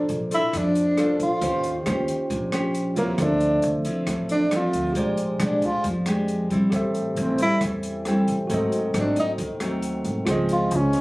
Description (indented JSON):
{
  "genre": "bossa nova",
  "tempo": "136 BPM",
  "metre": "4/4",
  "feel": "straight",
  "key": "unclear",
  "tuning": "A4 = 445 Hz",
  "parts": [
    { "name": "breathy tenor saxophone", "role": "melody", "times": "0.0-11.0 s", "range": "Bb3 to F4", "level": "-22 LUFS", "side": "equal", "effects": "none" },
    { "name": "nylon-string guitar", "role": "accompaniment", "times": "0.0-11.0 s", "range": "Ab2 to C5", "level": "-26 LUFS", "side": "equal", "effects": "none" },
    { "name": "tine electric piano", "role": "accompaniment", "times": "0.0-11.0 s", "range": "F4 to G5", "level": "-29 LUFS", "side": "right 1 dB", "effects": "medium stereo tremolo" },
    { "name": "upright bass", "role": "bass", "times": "0.0-10.9 s", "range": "Ab1 to F2", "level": "-29 LUFS", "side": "equal", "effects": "none" },
    { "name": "open jazz drum kit", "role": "drums", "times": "0.1-11.0 s", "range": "hi-hat, kick drum, rim click", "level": "-34 LUFS", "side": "equal", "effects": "none" }
  ],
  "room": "little or no reverb",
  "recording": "recorded on a phone in the room, club reverb",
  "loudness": "-21 LUFS",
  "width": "side -21 dB against mid",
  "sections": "0.0-11.0 A section",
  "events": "tenor saxophone solo 0.0-11.0",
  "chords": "0.0 Bbmaj9; 1.4 Eb13; 3.2 Dm9; 5.0 Bb13; 6.7 Am7; 8.5 Ab7b9; 10.3 Dbmaj7"
}